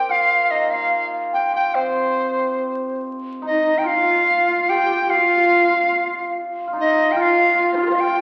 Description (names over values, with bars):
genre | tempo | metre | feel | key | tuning
chinese traditional, Chinese chamber ensemble | 73 BPM | 2/4 | straight | unclear | A4 = 440 Hz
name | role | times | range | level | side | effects
bright reedy large dizi | melody | 0.0-8.2 s | Eb4 to G5 | -20 LUFS | equal | none
hammered dulcimer | second line | 0.0-8.2 s | C4 to C5 | -26 LUFS | equal | none
breathy low xiao | second line | 3.4-8.2 s | Eb4 to G4 | -29 LUFS | equal | none
dark horsehead fiddle | second line | 3.4-8.2 s | Eb4 to F4 | -27 LUFS | equal | none
room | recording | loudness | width
wet recital hall reverb, RT60 1.7 s | very old 78 rpm record, vinyl crackle | -19 LUFS | mono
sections
0.0-3.4 A section; 3.4-8.2 B section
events
none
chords
none